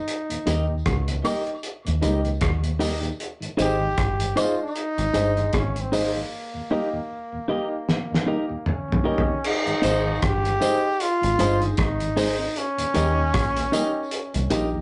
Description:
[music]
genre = roots reggae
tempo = 77 BPM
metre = 4/4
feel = swing 57% on 16ths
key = Ab major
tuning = A4 = 440 Hz
[part]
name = brilliant trombone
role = melody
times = 0.0-14.7 s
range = Bb3 to G4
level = -29 LUFS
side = equal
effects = none
[part]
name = cloth-damped thuddy drum kit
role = drums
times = 0.1-14.7 s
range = crash cymbal, hi-hat, kick drum, rim click, snare drum, toms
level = -29 LUFS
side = equal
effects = none
[part]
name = mellow tonewheel organ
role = accompaniment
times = 0.3-14.8 s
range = Eb2 to Eb4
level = -36 LUFS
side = equal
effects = slow rotary speaker
[part]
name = clean electric guitar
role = accompaniment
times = 0.5-14.7 s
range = Eb4 to Eb5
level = -28 LUFS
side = equal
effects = none
[part]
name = warm baby grand piano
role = stabs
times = 0.5-14.7 s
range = Eb4 to Eb5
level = -32 LUFS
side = equal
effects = none
[part]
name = deep dub fingered electric bass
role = bass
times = 0.5-14.8 s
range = G1 to Eb2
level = -28 LUFS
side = equal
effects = none
[part]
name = tambourine and woodblock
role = percussion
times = 0.5-14.7 s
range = none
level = -38 LUFS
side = equal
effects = dub echo
[sound]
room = moderate studio reverb, RT60 0.6 s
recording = rough rehearsal-room recording, nothing above 10.7 kHz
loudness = -24 LUFS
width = mono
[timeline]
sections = 0.0-9.4 A section; 9.4-14.8 B section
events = drum fill 7.9-9.4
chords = 0.1 Eb; 3.2 Ab; 6.3 Eb; 9.4 Ab; 12.6 Eb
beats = | 0.08 0.86 1.64 2.42 | 3.20 3.98 4.76 5.54 | 6.32 7.10 7.88 8.66 | 9.44 10.22 11.00 11.78 | 12.56 13.34 14.12

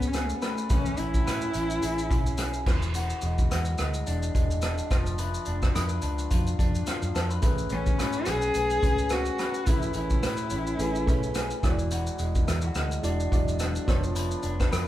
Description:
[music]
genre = indie pop, bedroom pop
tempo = 107 BPM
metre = 4/4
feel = swing 55% on 16ths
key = A major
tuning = A4 = 440 Hz
[part]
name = dark cello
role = melody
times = 0.0-2.7, 7.7-11.6 s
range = A3 to G#4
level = -30 LUFS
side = left 1 dB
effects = none
[part]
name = electric guitar through a small old amp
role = accompaniment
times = 0.0-14.9 s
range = E3 to B4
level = -33 LUFS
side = left 2 dB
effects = warbly pitch drift
[part]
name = vintage muted fingered electric bass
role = bass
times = 0.0-14.9 s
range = E1 to A2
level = -30 LUFS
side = equal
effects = none
[part]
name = unplugged drum kit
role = drums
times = 0.0-14.9 s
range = crash cymbal, hi-hat, kick drum, rim click, shaker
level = -27 LUFS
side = equal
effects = none
[part]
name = reed electric piano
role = accompaniment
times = 7.4-14.9 s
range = F#3 to D5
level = -34 LUFS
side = right 2 dB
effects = none
[sound]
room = light reverb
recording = band playing live in one room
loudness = -24 LUFS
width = side -13 dB against mid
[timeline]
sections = 0.0-14.9 A section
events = none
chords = 0.0 Amaj9; 2.7 E9; 4.9 C#7b9/E# (rootless); 7.4 Amaj9; 11.6 E9; 13.9 C#7b9/E#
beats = 0.14 | 0.70 1.26 1.82 2.39 | 2.95 3.51 4.07 4.63 | 5.19 5.75 6.31 6.87 | 7.43 7.99 8.55 9.11 | 9.67 10.23 10.79 11.35 | 11.91 12.47 13.04 13.60 | 14.16 14.72

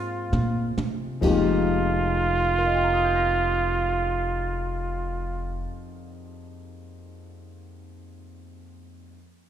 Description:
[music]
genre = jazz ballad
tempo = 44 BPM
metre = 4/4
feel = swing 69% on 8ths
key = F minor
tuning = A4 = 441 Hz
[part]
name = trumpet with plunger mute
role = melody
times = 0.0-5.7 s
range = F4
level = -25 LUFS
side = right 3 dB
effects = none
[part]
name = warm concert grand piano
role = accompaniment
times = 0.0-9.2 s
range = F2 to Bb6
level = -30 LUFS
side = left 4 dB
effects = none
[part]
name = upright bass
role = bass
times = 0.0-5.6 s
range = F1 to C3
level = -28 LUFS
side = equal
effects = none
[part]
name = jazz brush drum kit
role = drums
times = 0.3-1.7 s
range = crash cymbal, kick drum, toms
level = -30 LUFS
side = right 2 dB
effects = none
[sound]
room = moderate concert hall reverb, RT60 2.2 s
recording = recorded in a church or concert hall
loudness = -22 LUFS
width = side -10 dB against mid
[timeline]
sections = 0.0-1.2 A section; 1.2-6.6 B section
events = drum fill 0.0-1.2; slowing down 0.0-1.2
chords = 0.0 Fm11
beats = | 1.22 2.58 3.93 5.28

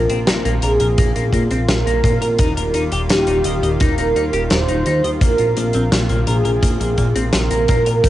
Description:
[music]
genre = synthwave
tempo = 85 BPM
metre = 4/4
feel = straight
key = unclear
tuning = A4 = 437 Hz
[part]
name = mellow synth brass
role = melody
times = 0.0-8.1 s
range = G4 to C5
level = -20 LUFS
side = right 1 dB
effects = chorus, cassette tape, tape echo
[part]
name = lush unison pad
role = sustained chords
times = 0.0-8.1 s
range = C3 to F4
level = -26 LUFS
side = equal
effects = chorus, sidechain pumping, cassette tape
[part]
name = chorused synth bass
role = bass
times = 0.0-8.1 s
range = Eb1 to Bb2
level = -20 LUFS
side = equal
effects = tube saturation, sidechain pumping
[part]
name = clean electric guitar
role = riff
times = 0.1-8.1 s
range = F3 to Eb5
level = -25 LUFS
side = left 2 dB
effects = analog chorus, cassette tape, tape echo
[part]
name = big rock drum kit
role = drums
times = 0.1-8.1 s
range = hi-hat, snare drum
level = -22 LUFS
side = left 1 dB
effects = none
[part]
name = kick drum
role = drums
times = 1.0-8.1 s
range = none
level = -19 LUFS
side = equal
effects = none
[sound]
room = light reverb, small room ambience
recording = home recording on cassette, nothing above 10.9 kHz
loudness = -14 LUFS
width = side -14 dB against mid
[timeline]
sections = 0.0-8.1 A section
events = none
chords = 0.0 Bbsus2; 2.4 Ebadd9; 5.2 Bbsus2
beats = 0.28 0.98 1.69 | 2.39 3.10 3.81 4.51 | 5.22 5.92 6.63 7.33 | 8.04

